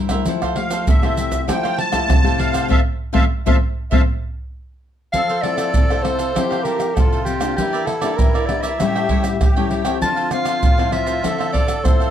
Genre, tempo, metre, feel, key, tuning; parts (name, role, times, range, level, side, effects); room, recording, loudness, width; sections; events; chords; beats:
samba and choro; 98 BPM; 4/4; straight; F major; A4 = 440 Hz
cavaquinho; accompaniment; 0.0-12.1 s; D4 to G5; -28 LUFS; right 5 dB
nylon-string guitar; accompaniment; 0.0-12.1 s; G2 to A4; -23 LUFS; left 6 dB
egg shaker, surdo, pandeiro and tamborim; percussion; 0.1-12.1 s; -18 LUFS; right 1 dB
musette accordion; second line; 0.6-12.1 s; E4 to A5; -25 LUFS; equal
breathy soprano saxophone; melody; 5.1-12.1 s; G4 to A5; -22 LUFS; equal; plate reverb
moderate studio reverb, RT60 0.7 s; dark, warm production; -16 LUFS; side -10 dB against mid
0.0-5.1 A section; 5.1-12.1 B section
accordion solo 0.0-5.1; band accent 2.7-5.1
0.3 Fmaj9; 5.1 Fmaj7; 7.6 Em7b5; 8.8 A7; 10.0 Dm9
| 0.27 0.88 1.49 2.10 | 2.70 3.31 3.92 4.53 | 5.14 5.75 6.36 6.97 | 7.58 8.19 8.80 9.41 | 10.02 10.63 11.24 11.85